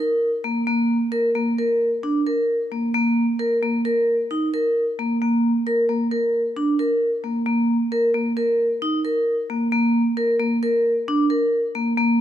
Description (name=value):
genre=contemporary instrumental, contemporary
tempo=133 BPM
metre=5/4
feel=straight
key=unclear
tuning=A4 = 440 Hz
part: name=vibraphone with medium hard mallets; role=solo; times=0.0-12.2 s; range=Bb3 to Bb4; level=-19 LUFS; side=equal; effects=none
room=light reverb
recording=close, detailed microphones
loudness=-19 LUFS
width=side -11 dB against mid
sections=0.0-12.2 A section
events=none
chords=none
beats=0.22 | 0.68 1.13 1.58 2.04 2.49 | 2.94 3.40 3.85 4.30 4.76 | 5.21 5.66 6.11 6.56 7.02 | 7.47 7.92 8.37 8.82 9.27 | 9.72 10.17 10.62 11.07 11.52 | 11.97